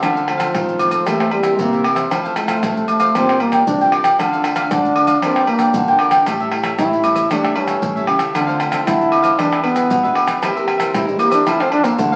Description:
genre	samba and choro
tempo	115 BPM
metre	4/4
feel	straight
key	D minor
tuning	A4 = 442 Hz
part	cavaquinho	accompaniment	0.0-12.2 s	D4 to G5	-24 LUFS	equal	none
part	nylon-string guitar	accompaniment	0.0-12.2 s	F2 to G#4	-28 LUFS	equal	none
part	nylon-string guitar	bass	0.0-12.2 s	G2 to A3	-26 LUFS	equal	none
part	agogo bells, maracas, surdo, pandeiro and tamborim	percussion	0.0-12.2 s	none	-21 LUFS	equal	none
part	warm trombone	melody	0.3-12.2 s	F3 to E4	-21 LUFS	equal	none
room	wet studio reverb, RT60 0.8 s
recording	very old 78 rpm record, vinyl crackle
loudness	-16 LUFS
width	mono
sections	0.0-12.2 A section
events	trombone solo 0.0-12.2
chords	0.0 Dm7; 1.1 C7/E; 2.1 Fmaj7; 3.2 Bb6; 4.2 Dm; 5.2 Gm7; 6.3 A7; 8.4 Dm7; 9.4 E7; 10.4 C7/E; 11.5 Fmaj7

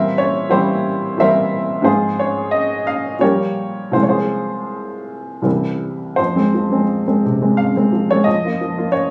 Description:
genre	classical, romantic character piece for solo piano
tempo	76-93 BPM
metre	3/4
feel	rubato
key	F minor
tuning	A4 = 440 Hz
part	clear upright piano	solo	0.0-9.1 s	C2 to F5	-18 LUFS	equal	none
room	light reverb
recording	recorded on a phone in the room, studio ambience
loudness	-18 LUFS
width	mono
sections	0.0-6.2 A section; 6.2-9.1 B section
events	none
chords	0.0 C7/Bb; 1.9 Fm/Ab; 3.2 Gm7b5/Bb; 3.9 Fm/C; 5.4 C; 6.2 Fm; 8.3 Bbm/F

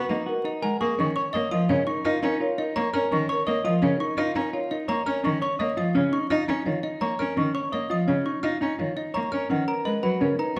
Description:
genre	classical, minimalist pattern music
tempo	169 BPM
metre	6/4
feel	straight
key	unclear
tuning	A4 = 441 Hz
part	marimba with soft mallets	melody	0.0-10.6 s	A#4 to C#6	-33 LUFS	equal	none
part	rich cello	accompaniment	0.0-10.6 s	C#3 to D#4	-30 LUFS	equal	none
part	clean electric guitar	arpeggios	0.0-10.6 s	C#4 to D#5	-30 LUFS	equal	none
part	trough xylophone with wooden mallets	arpeggios	0.0-10.6 s	D#5 to E#6	-34 LUFS	equal	none
part	dark French horn	second line	1.0-5.0, 9.5-10.6 s	A#4 to B4	-36 LUFS	equal	none
room	wet recital hall reverb, RT60 1.4 s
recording	vinyl crackle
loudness	-25 LUFS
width	mono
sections	0.0-10.6 A section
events	none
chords	0.0 G#7sus2; 1.0 A#m; 9.5 G#m9

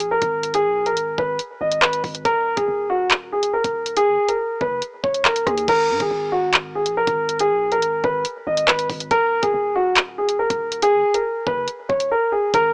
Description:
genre	hip hop, drill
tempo	140 BPM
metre	4/4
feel	half-time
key	unclear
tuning	A4 = 436 Hz
part	dark grand piano	melody	0.0-12.7 s	F#4 to D#5	-18 LUFS	equal	low-pass filter, cassette tape
part	long sustained 808-style bass	bass	0.0-12.7 s	D#1 to G#2	-35 LUFS	equal	none
part	drill drum kit	drums	0.0-12.6 s	crash cymbal, handclaps, hi-hat, kick drum, rim click	-20 LUFS	equal	overdrive, cassette tape
room	light reverb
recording	home recording on cassette, small speaker sound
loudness	-17 LUFS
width	side -34 dB against mid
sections	0.0-5.7 A section; 5.7-12.7 B section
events	drums muted 12.1-12.5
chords	0.0 G#m; 2.3 D#5; 5.7 N.C.; 9.1 D#5

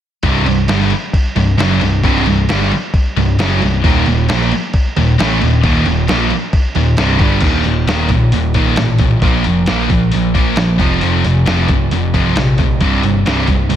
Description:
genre	hard rock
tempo	134 BPM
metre	4/4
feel	straight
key	C dorian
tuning	A4 = 441 Hz
part	scooped high-gain guitar	riff	0.2-13.8 s	C2 to Bb3	-18 LUFS	left 9 dB	distortion
part	sludgy distorted guitar	riff	0.2-13.8 s	C2 to Bb3	-16 LUFS	right 6 dB	overdrive, slapback echo
part	overdriven picked electric bass	bass	0.2-13.8 s	C1 to Bb1	-17 LUFS	equal	none
part	lo-fi sampler-style drum kit	drums	0.2-13.8 s	crash cymbal, hi-hat, kick drum, snare drum	-17 LUFS	equal	none
room	light reverb, digital ambience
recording	none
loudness	-11 LUFS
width	side -10 dB against mid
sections	0.2-7.4 A section; 7.4-13.8 B section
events	none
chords	0.2 C5; 3.8 Eb5; 9.2 Bb5; 10.8 F5; 12.8 C5

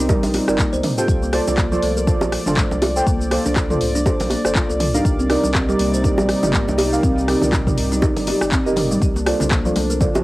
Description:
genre	afro house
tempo	121 BPM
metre	4/4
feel	swing 57% on 16ths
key	unclear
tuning	A4 = 440 Hz
part	warm analog pad	sustained chords	0.0-10.2 s	C3 to D5	-27 LUFS	equal	chorus, sidechain pumping, cassette tape
part	kalimba	arpeggios	0.0-10.2 s	F3 to C5	-22 LUFS	equal	sidechain pumping, cassette tape, tape echo
part	deep mellow chord stab	stabs	0.0-10.2 s	Eb4 to G5	-22 LUFS	right 2 dB	chorus, sidechain pumping, cassette tape, tape echo
part	warm sub bass	bass	0.0-10.2 s	G1 to C2	-26 LUFS	equal	sidechain pumping
part	electronic kick drum	drums	0.1-10.1 s	none	-20 LUFS	equal	overdrive, studio reverb, cassette tape
part	house drum kit	drums	0.1-10.2 s	handclaps, hi-hat, rim click, shaker, toms	-24 LUFS	equal	overdrive, studio reverb, cassette tape
part	bongos	percussion	0.1-10.2 s	none	-24 LUFS	right 1 dB	none
part	congas	percussion	9.2-10.1 s	none	-27 LUFS	left 1 dB	none
room	light reverb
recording	home recording on cassette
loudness	-16 LUFS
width	side -18 dB against mid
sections	0.0-10.2 A section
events	drum fill 8.8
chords	0.0 Bbmaj7; 5.0 Cm7; 9.0 Bbmaj7

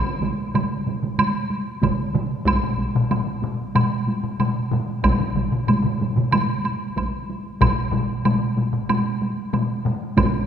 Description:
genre	japanese traditional, taiko drum ensemble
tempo	94 BPM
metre	4/4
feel	straight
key	none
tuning	none
part	taiko ensemble	percussion	0.2-10.3 s	none	-24 LUFS	right 1 dB	none
part	taiko ensemble	percussion	0.2-10.3 s	none	-26 LUFS	right 3 dB	none
part	woodblock	percussion	0.6-10.3 s	none	-27 LUFS	right 2 dB	none
part	taiko ensemble	percussion	1.8-10.3 s	none	-26 LUFS	right 1 dB	none
part	taiko ensemble	percussion	2.6-10.0 s	none	-24 LUFS	left 3 dB	none
room	wet concert hall reverb, RT60 2.4 s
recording	minimal, uncompressed stereo recording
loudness	-20 LUFS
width	side -8 dB against mid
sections	0.0-10.5 A section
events	none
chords	none

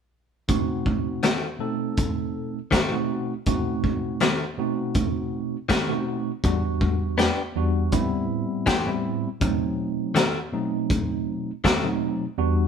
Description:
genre	straight-eighth soul blues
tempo	81 BPM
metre	4/4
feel	straight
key	unclear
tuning	A4 = 440 Hz
part	mellow tine electric piano	accompaniment	0.5-12.7 s	E2 to A4	-25 LUFS	right 2 dB	slow stereo tremolo
part	crunchy breakbeat drum kit	drums	0.5-11.8 s	hi-hat, kick drum, snare drum	-25 LUFS	equal	none
part	direct-recorded clean electric guitar	stabs	1.2-11.9 s	D#3 to G4	-25 LUFS	left 4 dB	warbly pitch drift
room	light reverb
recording	band playing live in one room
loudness	-22 LUFS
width	side -7 dB against mid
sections	0.5-12.4 A section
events	none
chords	0.5 B7b9; 6.4 Em7; 7.9 Am7; 9.4 B7b9

